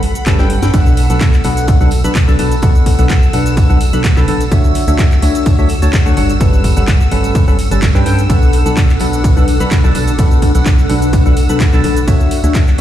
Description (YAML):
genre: piano house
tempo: 127 BPM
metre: 4/4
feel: swing 53% on 16ths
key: B minor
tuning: A4 = 441 Hz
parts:
  - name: string machine, violins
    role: sustained chords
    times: 0.0-12.8 s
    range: B5 to E6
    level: -28 LUFS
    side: equal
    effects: ensemble chorus, sidechain pumping
  - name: house drum kit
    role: drums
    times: 0.0-12.8 s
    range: cabasa, handclaps, hi-hat, ride cymbal, snare drum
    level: -24 LUFS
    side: equal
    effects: overdrive
  - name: granular cloud pad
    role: texture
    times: 0.0-12.8 s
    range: D4 to F#5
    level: -22 LUFS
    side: left 1 dB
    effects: built-in reverb, sidechain pumping
  - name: percussive organ stab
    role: riff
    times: 0.3-12.8 s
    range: B2 to B5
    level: -17 LUFS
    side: left 1 dB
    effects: wide subtle chorus, sidechain pumping, ping-pong delay
  - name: organ-like FM bass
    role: bass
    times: 0.3-12.8 s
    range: G1 to G2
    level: -15 LUFS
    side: equal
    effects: sidechain pumping
  - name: electronic kick drum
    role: drums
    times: 0.3-12.6 s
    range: none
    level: -12 LUFS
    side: equal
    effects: overdrive
  - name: tambourine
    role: percussion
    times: 0.7-12.8 s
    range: none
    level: -34 LUFS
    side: right 3 dB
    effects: none
room: digital ambience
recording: played on a big sound system in a bare room, large studio reverb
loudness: -9 LUFS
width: side -12 dB against mid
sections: 0.0-12.8 A section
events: drum fill 0.3-0.7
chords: 0.0 Gmaj9#11; 0.7 Bm7; 4.5 Dmaj9; 6.4 Gmaj9#11; 8.3 Bm7; 12.1 Dmaj9